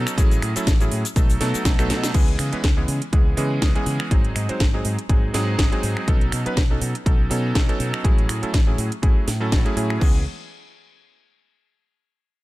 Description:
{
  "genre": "nu-disco, nu disco",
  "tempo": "122 BPM",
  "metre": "4/4",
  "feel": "swing 55% on 16ths",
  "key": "C# minor",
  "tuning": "A4 = 440 Hz",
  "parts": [
    { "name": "warm electric grand piano", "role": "accompaniment", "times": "0.0-10.2 s", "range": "E3 to B#4", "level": "-26 LUFS", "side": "right 2 dB", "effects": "ping-pong delay" },
    { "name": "fingered electric bass with an envelope filter", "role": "bass", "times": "0.0-10.2 s", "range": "G#1 to C#3", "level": "-25 LUFS", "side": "equal", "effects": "none" },
    { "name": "house drum kit", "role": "drums", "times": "0.1-10.1 s", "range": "crash cymbal, finger snaps, hi-hat, shaker, snare drum", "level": "-28 LUFS", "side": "equal", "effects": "none" },
    { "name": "electronic kick drum", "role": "drums", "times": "0.2-10.1 s", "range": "none", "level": "-18 LUFS", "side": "equal", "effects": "none" }
  ],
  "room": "little or no reverb",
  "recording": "none",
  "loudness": "-18 LUFS",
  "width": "side -18 dB against mid",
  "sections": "0.0-2.1 A section; 2.1-10.0 B section; 10.0-12.0 C section",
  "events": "drop 0.0-2.1; drum fill 1.9",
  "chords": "0.2 F#m9/A; 1.2 B7; 2.1 C#m7; 4.1 G#7; 6.1 B9; 8.0 F#m9/A; 10.0 C#m7",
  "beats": "| 0.18 0.67 1.16 1.65 | 2.15 2.64 3.13 3.62 | 4.11 4.61 5.10 5.59 | 6.08 6.57 7.06 7.56 | 8.05 8.54 9.03 9.52 | 10.02"
}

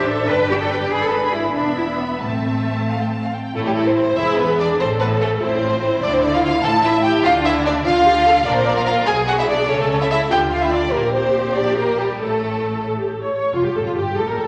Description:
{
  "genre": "quick classical-period movement for string orchestra",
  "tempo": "90-100 BPM (dotted quarters)",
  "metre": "6/8",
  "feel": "rubato",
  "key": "A minor",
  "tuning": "A4 = 443 Hz",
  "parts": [
    { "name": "warm symphonic violin section", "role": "melody", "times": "0.0-14.5 s", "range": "G3 to B5", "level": "-28 LUFS", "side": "equal", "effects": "none" },
    { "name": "warm symphonic violin section", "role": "second line", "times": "0.0-14.5 s", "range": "F4 to A5", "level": "-22 LUFS", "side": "equal", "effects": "none" },
    { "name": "warm symphonic viola section", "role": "accompaniment", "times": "0.0-14.5 s", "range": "B3 to C#5", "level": "-24 LUFS", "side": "equal", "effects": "none" },
    { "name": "rich chamber double bass section", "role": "bass", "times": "0.0-14.5 s", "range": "E1 to D2", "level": "-30 LUFS", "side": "equal", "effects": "none" },
    { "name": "warm symphonic cello section", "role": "bass", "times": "0.0-14.5 s", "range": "E2 to B4", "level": "-26 LUFS", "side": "equal", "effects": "none" }
  ],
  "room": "wet scoring stage reverb, RT60 1.5 s",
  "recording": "none",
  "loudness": "-18 LUFS",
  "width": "mono",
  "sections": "0.0-3.5 A section; 3.5-13.5 B section",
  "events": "none",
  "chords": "0.3 G; 0.9 E7/G#; 1.6 E5; 2.2 Am; 3.5 A5; 4.2 E; 4.8 Am; 6.0 Dm9; 6.6 A5; 7.2 Dm; 8.5 Bbadd9; 9.1 Bm6; 9.7 A/C#; 10.3 Dm; 10.9 Gm/Bb; 12.2 N.C.; 12.9 A; 13.5 Fadd9",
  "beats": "0.30 | 0.92 1.56 | 2.22 2.88 | 3.54 4.17 | 4.80 5.41 | 6.03 6.64 | 7.25 7.86 | 8.46 9.08 | 9.70 10.31 | 10.93 11.56 | 12.22 12.88 | 13.53 14.16"
}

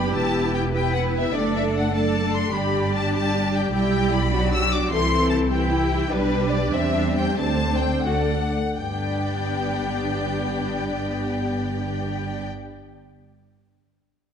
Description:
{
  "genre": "quick classical-period movement for string orchestra",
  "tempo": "79-102 BPM (dotted quarters)",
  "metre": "6/8",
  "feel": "rubato",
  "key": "G major",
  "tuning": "A4 = 442 Hz",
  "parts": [
    { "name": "warm symphonic violin section", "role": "melody", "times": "0.0-12.4 s", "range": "B4 to E6", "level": "-28 LUFS", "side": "left 4 dB", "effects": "none" },
    { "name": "rich symphonic violin section", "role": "second line", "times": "0.0-12.4 s", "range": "D4 to D5", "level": "-28 LUFS", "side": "left 4 dB", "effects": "none" },
    { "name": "rich symphonic viola section", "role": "accompaniment", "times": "0.0-12.4 s", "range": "E3 to E4", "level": "-26 LUFS", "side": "equal", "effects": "none" },
    { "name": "rich symphonic cello section", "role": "bass", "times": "0.0-12.4 s", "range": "G2 to B4", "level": "-30 LUFS", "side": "right 2 dB", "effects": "none" },
    { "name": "warm symphonic double bass section", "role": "bass", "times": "0.0-12.4 s", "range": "E1 to E2", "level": "-26 LUFS", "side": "right 2 dB", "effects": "none" }
  ],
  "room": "moderate scoring stage reverb, RT60 1.9 s",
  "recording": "dark, warm production",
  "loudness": "-20 LUFS",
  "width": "side -8 dB against mid",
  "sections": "0.0-8.8 A section; 8.8-11.7 B section",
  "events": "slowing down 5.5-8.8",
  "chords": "0.1 Em; 1.3 D/F#; 2.5 G; 3.7 G/B; 4.9 C; 6.1 G/B; 6.7 C/E; 7.4 D5; 8.1 D; 8.8 G",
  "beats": "| 0.14 0.74 | 1.34 1.94 | 2.54 3.13 | 3.72 4.32 | 4.91 5.51 | 6.11 6.73 | 7.37 8.06 | 8.79 9.51 | 10.24 10.96"
}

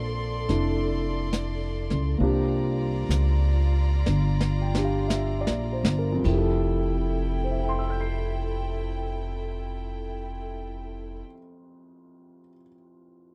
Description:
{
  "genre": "jazz ballad",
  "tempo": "50-74 BPM",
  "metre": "4/4",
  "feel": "swing 68% on 8ths",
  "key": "F major",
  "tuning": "A4 = 440 Hz",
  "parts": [
    { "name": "warm concert grand piano", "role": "accompaniment", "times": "0.0-13.3 s", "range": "F2 to C7", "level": "-33 LUFS", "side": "equal", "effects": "none" },
    { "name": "warm studio string section", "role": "sustained chords", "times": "0.0-11.2 s", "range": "E4 to C6", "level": "-38 LUFS", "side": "equal", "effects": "none" },
    { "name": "upright bass", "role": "bass", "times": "0.0-11.2 s", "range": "F1 to Db2", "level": "-28 LUFS", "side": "equal", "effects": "none" },
    { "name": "vintage brush drum kit", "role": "drums", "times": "0.5-6.6 s", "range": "brushed snare drum, hi-hat, kick drum, ride cymbal, snare drum", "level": "-30 LUFS", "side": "equal", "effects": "none" }
  ],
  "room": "little or no reverb",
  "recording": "dry, close 1970s-style studio recording",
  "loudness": "-26 LUFS",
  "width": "mono",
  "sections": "0.0-6.2 A section; 6.2-11.0 B section",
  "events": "slowing down 0.0-6.2; drum fill 4.1-6.2",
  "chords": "0.0 Bbmaj9; 2.2 C9sus4; 6.2 Fmaj9",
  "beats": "0.50 1.33 | 2.19 3.10 4.06 5.10 | 6.24 7.43 8.61 9.79"
}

